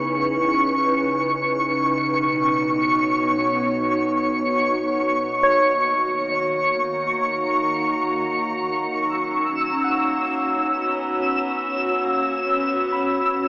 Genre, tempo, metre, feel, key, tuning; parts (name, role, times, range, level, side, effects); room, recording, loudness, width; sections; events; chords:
ambient; free time; A4 = 439 Hz
soft additive organ-like pad; sustained chords; 0.0-13.5 s; B2 to A#5; -23 LUFS; equal; ensemble chorus, built-in reverb
twinkling granular texture; texture; 0.0-13.5 s; C#6 to E6; -22 LUFS; equal; built-in reverb
barky tine electric piano; arpeggios; 5.4-13.5 s; C#5 to B5; -25 LUFS; equal; overdrive, diffuse ambient delay
rich cello; melody; 9.0-13.3 s; F#3 to B3; -35 LUFS; equal; diffuse ambient delay
wet cathedral reverb, RT60 5.1 s; AM radio sound; -18 LUFS; side -24 dB against mid
0.0-9.0 A section; 9.0-13.5 B section
filter sweep on ambient pad 0.0-9.0
0.0 C#m7; 1.9 Badd9; 5.4 D#m; 9.0 F#sus4